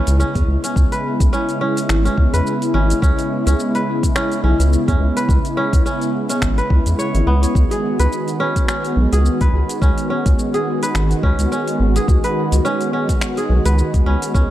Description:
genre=organic downtempo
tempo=106 BPM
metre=4/4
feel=swing 56% on 16ths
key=C# minor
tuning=A4 = 439 Hz
part: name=warm analog pad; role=sustained chords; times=0.0-14.5 s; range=C#3 to F#4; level=-21 LUFS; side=equal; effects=chorus, sidechain pumping
part: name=kora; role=arpeggios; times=0.0-14.5 s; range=B3 to C#5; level=-23 LUFS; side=right 1 dB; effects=digital delay
part: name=impact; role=sound effects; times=0.0-0.8 s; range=none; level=barely audible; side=none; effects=none
part: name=round analog bass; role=bass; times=0.1-14.4 s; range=G#1 to E2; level=-16 LUFS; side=equal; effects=sidechain pumping
part: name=deep house drum kit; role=drums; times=0.1-14.5 s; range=finger snaps, hi-hat, shaker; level=-27 LUFS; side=left 1 dB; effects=none
part: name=electronic kick drum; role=drums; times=0.4-14.5 s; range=none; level=-18 LUFS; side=equal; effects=none
room=light reverb, digital ambience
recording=dark, warm production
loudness=-15 LUFS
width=side -13 dB against mid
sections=0.0-14.5 A section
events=impact 0.0-0.8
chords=0.0 C#m7; 7.6 G#m7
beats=0.20 | 0.76 1.33 1.89 2.46 | 3.02 3.59 4.16 4.72 | 5.29 5.86 6.42 6.99 | 7.55 8.12 8.69 9.25 | 9.82 10.38 10.95 11.52 | 12.08 12.65 13.21 13.78 | 14.35

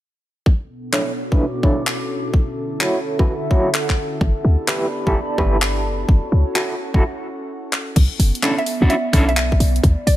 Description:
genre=UK garage, two-step garage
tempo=128 BPM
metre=4/4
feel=swing 66% on 16ths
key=B minor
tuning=A4 = 440 Hz
part: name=airy breathy pad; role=sustained chords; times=0.8-7.9 s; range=B2 to A4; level=-30 LUFS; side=equal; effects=chorus, sidechain pumping
part: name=electronic kick drum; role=drums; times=0.5-10.0 s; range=none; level=-16 LUFS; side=equal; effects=small room ambience
part: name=warbly tape-like pad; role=texture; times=0.5-10.2 s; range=D3 to D6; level=-28 LUFS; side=right 1 dB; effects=chorus, built-in reverb, sidechain pumping
part: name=electric guitar at the edge of break-up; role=stabs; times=0.9-9.3 s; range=C#4 to C#5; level=-22 LUFS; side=right 1 dB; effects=tremolo, low-pass filter, tape echo
part: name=garage drum kit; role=drums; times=0.9-10.2 s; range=crash cymbal, finger snaps, handclaps, hi-hat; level=-23 LUFS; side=left 1 dB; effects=small room ambience
part: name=short 808-style bass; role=bass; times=4.2-10.2 s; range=F#1 to D2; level=-16 LUFS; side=equal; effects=none
part: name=mallet-like synth pluck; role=melody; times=8.6-10.2 s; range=D5 to E5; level=-24 LUFS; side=equal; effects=chorus, tape echo
room=light reverb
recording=none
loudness=-16 LUFS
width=side -14 dB against mid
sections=0.5-8.0 A section; 8.0-10.2 B section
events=filter sweep on analog synth pad 0.5-8.0; break 7.0-8.0; drum fill 7.7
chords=0.5 Bm11; 2.3 Dmaj9; 4.2 G6; 5.9 F#m7; 8.0 Bm11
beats=| 0.46 0.93 1.40 1.87 | 2.34 2.81 3.27 3.74 | 4.21 4.68 5.15 5.62 | 6.09 6.55 7.02 7.49 | 7.96 8.43 8.90 9.37 | 9.84

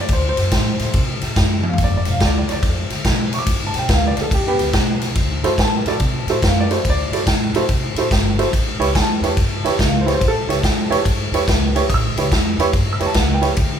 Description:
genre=electric blues shuffle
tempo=142 BPM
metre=4/4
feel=swing 65% on 8ths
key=unclear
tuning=A4 = 440 Hz
part: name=warm upright piano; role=accompaniment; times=0.0-13.6 s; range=B3 to E6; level=-21 LUFS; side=right 2 dB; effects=none
part: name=upright bass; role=bass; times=0.1-13.8 s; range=G1 to C3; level=-23 LUFS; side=equal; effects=none
part: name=swinging big-band drum kit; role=drums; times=0.1-13.7 s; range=kick drum, ride cymbal, snare drum, toms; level=-18 LUFS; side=equal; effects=none
room=light reverb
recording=band playing live in one room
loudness=-15 LUFS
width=side -8 dB against mid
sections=0.0-13.8 A section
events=drum fill 1.6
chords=0.0 D7; 1.8 G7; 5.2 D9; 8.5 A9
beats=| 0.10 0.52 0.95 1.37 | 1.79 2.21 2.63 3.06 | 3.48 3.90 4.32 4.74 | 5.16 5.59 6.01 6.43 | 6.85 7.27 7.69 8.12 | 8.54 8.96 9.38 9.80 | 10.22 10.64 11.06 11.48 | 11.90 12.32 12.74 13.16 | 13.58

